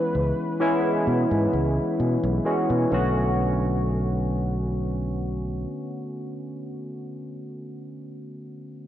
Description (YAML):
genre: vaporwave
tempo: 65 BPM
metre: 4/4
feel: straight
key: B minor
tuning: A4 = 440 Hz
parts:
  - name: warm velvety synth lead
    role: melody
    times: 0.0-2.0 s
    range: B4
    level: -33 LUFS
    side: equal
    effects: chorus, tape echo
  - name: barky tine electric piano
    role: accompaniment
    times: 0.0-8.9 s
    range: D3 to F#4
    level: -26 LUFS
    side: equal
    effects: analog chorus, analog delay
  - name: overdriven fingered electric bass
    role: bass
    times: 0.1-5.6 s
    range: B1 to B2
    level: -25 LUFS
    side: equal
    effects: transformer saturation
room: little or no reverb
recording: dry, gritty hardware recording, cassette tape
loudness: -22 LUFS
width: side -11 dB against mid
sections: 0.0-2.9 A section; 2.9-6.6 B section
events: none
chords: 0.0 C#m7; 2.9 Bm9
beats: 0.15 1.07 1.99 | 2.92 3.84 4.76 5.68